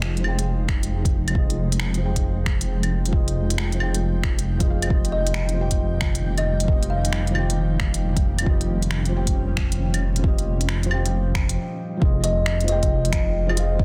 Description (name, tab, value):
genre	future garage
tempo	135 BPM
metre	4/4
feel	swing 65% on 16ths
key	F minor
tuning	A4 = 440 Hz
part	felt-muted upright piano	accompaniment	0.0-13.8 s	F3 to G5	-32 LUFS	equal	sidechain pumping, low-pass filter, dub echo
part	granular cloud pad	sustained chords	0.0-13.8 s	Bb2 to G5	-33 LUFS	equal	built-in reverb, sidechain pumping
part	dark detuned saw bass	bass	0.0-13.8 s	F1	-26 LUFS	equal	sidechain pumping
part	organic electronic drum kit	drums	0.0-13.7 s	claves, finger snaps, hi-hat	-32 LUFS	equal	soft clipping on snare
part	electronic kick drum	drums	0.7-13.8 s	none	-24 LUFS	equal	none
part	kalimba	melody	5.1-7.3, 12.2-13.1 s	Eb5 to F5	-31 LUFS	equal	dub echo
room	light reverb, digital ambience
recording	dense, heavily limited modern master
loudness	-22 LUFS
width	mono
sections	0.0-12.0 A section; 12.0-13.8 B section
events	filter sweep on felt piano 0.0-12.0; stop 11.6-12.0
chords	0.0 Fm7; 4.9 Eb/F; 12.0 Fm7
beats	0.02 0.46 0.91 | 1.35 1.79 2.24 2.68 | 3.13 3.57 4.02 4.46 | 4.91 5.35 5.79 6.24 | 6.68 7.13 7.57 8.02 | 8.46 8.90 9.35 9.79 | 10.24 10.68 11.13 11.57 | 12.02 12.46 12.90 13.35 | 13.79